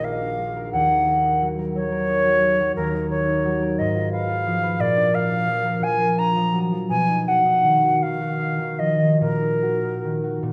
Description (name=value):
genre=classical, romantic duo for flute and harp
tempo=47-60 BPM (dotted quarters)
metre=6/8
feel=rubato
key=Eb minor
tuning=A4 = 441 Hz
part: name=silver concert flute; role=melody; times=0.0-10.4 s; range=Bb4 to Bb5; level=-23 LUFS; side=equal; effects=none
part: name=concert harp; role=accompaniment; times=0.0-10.5 s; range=A#1 to Cb5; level=-25 LUFS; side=equal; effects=none
room=wet recital hall reverb, RT60 1.7 s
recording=nothing above 10.8 kHz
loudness=-21 LUFS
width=mono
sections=0.0-10.5 A section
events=none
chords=0.0 A#7; 0.7 D#m7; 2.8 Ebm; 3.8 Fdim/Ab; 4.8 Bb; 6.9 B; 9.2 Ebm/Bb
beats=| 0.72 1.75 | 2.76 3.78 | 4.80 5.83 | 6.91 8.03 | 9.21 10.44